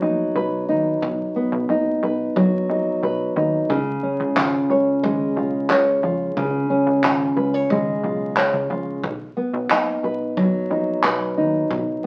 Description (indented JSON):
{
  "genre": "acoustic pop",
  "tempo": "90 BPM",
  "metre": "4/4",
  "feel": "straight",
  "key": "B lydian",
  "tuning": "A4 = 441 Hz",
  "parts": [
    { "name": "nylon-string guitar", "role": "accompaniment", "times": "0.0-12.1 s", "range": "C#3 to C#5", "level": "-22 LUFS", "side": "equal", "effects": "none" },
    { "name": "plucky analog bass", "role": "bass", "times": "0.0-12.0 s", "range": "F#1 to E#2", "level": "-33 LUFS", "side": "equal", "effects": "none" },
    { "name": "unplugged drum kit", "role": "drums", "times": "1.0-11.9 s", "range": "handclaps, kick drum", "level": "-26 LUFS", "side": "equal", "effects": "none" }
  ],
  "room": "wet studio reverb, RT60 0.6 s",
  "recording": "very old 78 rpm record, vinyl crackle",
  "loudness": "-21 LUFS",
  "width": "mono",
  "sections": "0.0-12.1 A section",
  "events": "none",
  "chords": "0.0 B; 3.7 C#; 9.0 B"
}